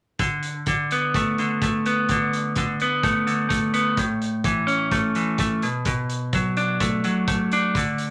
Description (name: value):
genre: indie rock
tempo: 127 BPM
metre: 4/4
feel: straight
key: D major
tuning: A4 = 441 Hz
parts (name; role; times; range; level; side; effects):
- biting overdriven guitar; riff; 0.2-8.1 s; A2 to D4; -23 LUFS; equal; none
- loose indie drum kit; drums; 0.2-8.1 s; hi-hat, kick drum; -30 LUFS; equal; none
room: moderate studio ambience, RT60 0.4 s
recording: none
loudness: -23 LUFS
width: mono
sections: 0.2-8.1 A section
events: none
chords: 0.2 D5; 4.0 A; 5.6 Bm7